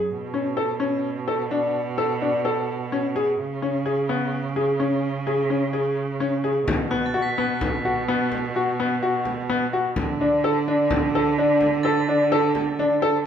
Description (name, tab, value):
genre	contemporary instrumental, chamber music in an uneven meter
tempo	128 BPM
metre	7/4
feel	straight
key	unclear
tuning	A4 = 441 Hz
part	clear cello	bass	0.0-13.3 s	F#2 to D3	-26 LUFS	right 5 dB	none
part	bright grand piano	arpeggios	0.3-13.2 s	B3 to A4	-22 LUFS	left 2 dB	none
part	frame drum	percussion	6.7-12.9 s	none	-28 LUFS	left 2 dB	none
part	crotales	texture	6.9-13.2 s	F#6 to B6	-33 LUFS	right 2 dB	none
room	moderate recital hall reverb, RT60 1.6 s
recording	minimal, uncompressed stereo recording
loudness	-20 LUFS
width	side -8 dB against mid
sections	0.0-6.7 A section; 6.7-13.3 B section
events	none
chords	0.1 Bm9; 3.4 C#5; 6.7 B5; 10.0 D5